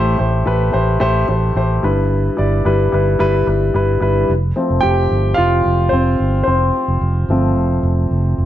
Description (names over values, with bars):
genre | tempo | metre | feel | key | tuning
piano-driven pop | 110 BPM | 4/4 | straight | unclear | A4 = 440 Hz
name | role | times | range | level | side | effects
warm baby grand piano | accompaniment | 0.0-8.5 s | G2 to G5 | -16 LUFS | left 1 dB | none
fingered electric bass | bass | 0.0-8.5 s | F1 to A1 | -17 LUFS | right 1 dB | none
room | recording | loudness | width
moderate studio reverb, RT60 0.7 s | dark, warm production | -13 LUFS | side -12 dB against mid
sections
0.0-4.3 A section; 4.3-8.5 B section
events
grand piano solo 4.3-8.5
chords
0.0 Am7; 1.8 G6; 4.3 F